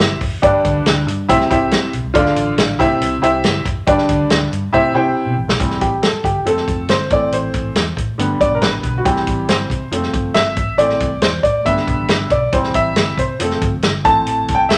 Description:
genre	uptempo 1960s-style soul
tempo	139 BPM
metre	4/4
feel	straight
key	C major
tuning	A4 = 440 Hz
part	bright grand piano	accompaniment	0.0-14.8 s	G2 to A5	-18 LUFS	equal	none
part	vintage muted fingered electric bass	bass	0.0-14.8 s	F1 to C3	-26 LUFS	equal	none
part	warm soul drum kit	drums	0.0-14.8 s	hi-hat, kick drum, snare drum	-21 LUFS	equal	none
room	moderate large studio reverb, RT60 0.8 s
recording	none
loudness	-16 LUFS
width	mono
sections	0.0-5.6 A section; 5.6-14.8 B section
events	drum fill 4.7-5.6; grand piano solo 5.6-14.8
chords	0.4 G; 1.3 C; 2.2 Dm; 2.8 C; 3.9 G; 4.7 C; 6.5 F; 7.1 Am; 8.2 G; 9.1 C; 9.9 F; 10.6 Am; 11.7 G; 12.5 C; 13.4 F; 14.1 Am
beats	0.00 | 0.43 0.86 1.29 1.72 | 2.15 2.58 3.01 3.44 | 3.87 4.30 4.74 5.17 | 5.60 6.03 6.46 6.89 | 7.32 7.76 8.19 8.62 | 9.05 9.49 9.92 10.36 | 10.79 11.22 11.66 12.10 | 12.53 12.97 13.40 13.84 | 14.27 14.71

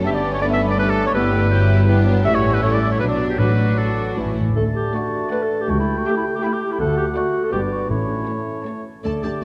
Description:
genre	quick classical-period movement for symphony orchestra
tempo	161 BPM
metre	3/4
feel	rubato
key	D major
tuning	A4 = 440 Hz
part	rich studio violin section	melody	0.0-9.3 s	D4 to A5	-36 LUFS	equal	none
part	mellow hollow large flute ensemble	second line	0.0-4.4 s	A5 to G6	-34 LUFS	equal	none
part	rich studio violin section	second line	0.0-9.4 s	B3 to E5	-36 LUFS	equal	none
part	dark studio viola section	accompaniment	0.0-9.4 s	F#3 to B3	-30 LUFS	equal	none
part	mellow bassoon	accompaniment	0.0-9.4 s	E3 to B3	-30 LUFS	equal	none
part	dark French horn section	sustained chords	0.0-9.4 s	E3 to G4	-30 LUFS	equal	none
part	dark studio double bass section	bass	0.0-9.3 s	G1 to D2	-26 LUFS	equal	none
part	warm studio cello section	bass	0.0-9.4 s	C#2 to D3	-26 LUFS	equal	none
part	clear oboe	second line	0.1-9.4 s	G4 to A5	-29 LUFS	equal	none
part	mellow clarinet	second line	0.1-9.4 s	E4 to E5	-28 LUFS	equal	none
part	timpani	percussion	3.4-4.6, 7.9-8.4 s	A2	-27 LUFS	equal	none
room	wet concert hall reverb, RT60 2.5 s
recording	none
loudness	-19 LUFS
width	mono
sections	0.0-4.6 A section; 4.6-9.4 B section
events	timpani fill 4.2-4.6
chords	0.1 G; 1.1 Em/G; 2.3 A7; 3.0 Bm; 3.4 D/A; 4.2 A; 4.6 D; 5.7 A7/C#; 6.8 D; 7.5 G; 7.9 A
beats	| 0.05 0.42 0.79 | 1.15 1.52 1.89 | 2.26 2.63 3.01 | 3.39 3.78 4.17 | 4.57 4.95 5.32 | 5.70 6.07 6.44 | 6.80 7.17 7.53 | 7.90 8.28 8.66 | 9.04 9.42

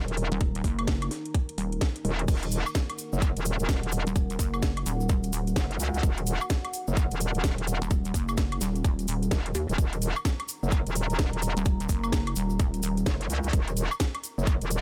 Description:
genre	bass house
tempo	128 BPM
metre	4/4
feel	swing 62% on 16ths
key	Eb minor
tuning	A4 = 438 Hz
part	dark analog pad	sustained chords	0.1-14.8 s	Eb4 to Bb5	-43 LUFS	equal	chorus, phaser, sidechain pumping
part	metallic wobble bass	bass	0.0-14.8 s	Eb1 to Db2	-30 LUFS	equal	chorus, tube saturation, sidechain pumping
part	house drum kit	drums	0.1-14.8 s	crash cymbal, hi-hat, snare drum, woodblock	-37 LUFS	equal	small room ambience
part	pulsing pluck wobble bass	bass	0.3-13.1 s	Eb1 to Eb2	-31 LUFS	equal	chorus, sidechain pumping
part	electronic kick drum	drums	0.4-14.6 s	none	-28 LUFS	equal	overdrive, small room ambience
part	cabasa	percussion	2.3-14.8 s	none	-42 LUFS	equal	none
room	little or no reverb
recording	none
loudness	-28 LUFS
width	mono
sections	0.0-14.8 A section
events	none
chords	0.0 Ebm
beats	| 0.41 0.88 1.34 1.81 | 2.28 2.75 3.22 3.69 | 4.16 4.63 5.09 5.56 | 6.03 6.50 6.97 7.44 | 7.91 8.38 8.85 9.31 | 9.78 10.25 10.72 11.19 | 11.66 12.13 12.60 13.06 | 13.53 14.00 14.47

